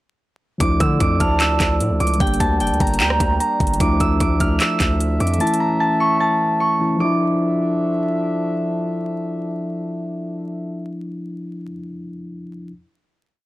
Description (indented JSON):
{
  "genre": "hip hop, trap",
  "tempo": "150 BPM",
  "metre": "4/4",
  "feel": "half-time",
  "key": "D harmonic minor",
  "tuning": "A4 = 440 Hz",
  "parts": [
    { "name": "concert harp", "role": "melody", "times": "0.6-8.2 s", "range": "G5 to F6", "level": "-21 LUFS", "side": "right 1 dB", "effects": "none" },
    { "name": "mellow tine electric piano", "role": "accompaniment", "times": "0.6-12.7 s", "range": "E3 to G4", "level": "-23 LUFS", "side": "left 1 dB", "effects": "none" },
    { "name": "warm French horn section", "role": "sustained chords", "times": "0.6-11.0 s", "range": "E3 to E5", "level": "-28 LUFS", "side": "right 1 dB", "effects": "none" },
    { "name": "distorted 808-style bass", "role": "bass", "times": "0.6-5.4 s", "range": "F1 to D3", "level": "-21 LUFS", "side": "equal", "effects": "distortion" },
    { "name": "trap drum kit", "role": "drums", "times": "0.6-5.6 s", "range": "handclaps, hi-hat, kick drum, rim click", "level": "-20 LUFS", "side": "equal", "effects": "overdrive" },
    { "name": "baroque flute", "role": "second line", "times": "1.2-3.4 s", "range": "G5 to Bb5", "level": "-26 LUFS", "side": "right 3 dB", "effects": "analog delay" }
  ],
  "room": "studio reverb",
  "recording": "dry, gritty hardware recording, vinyl crackle",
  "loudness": "-17 LUFS",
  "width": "side -17 dB against mid",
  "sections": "0.6-7.0 hook; 7.0-10.2 final chord",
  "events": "none",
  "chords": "0.6 Dmadd9; 2.2 Gm; 3.8 Dmadd9; 5.4 A; 7.0 Dmadd9",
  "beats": "| 0.60 1.00 1.40 1.80 | 2.20 2.60 3.00 3.40 | 3.80 4.20 4.60 5.00 | 5.40 5.80 6.20 6.60 | 7.00 7.40 7.80 8.20 | 8.60 9.00 9.40 9.80"
}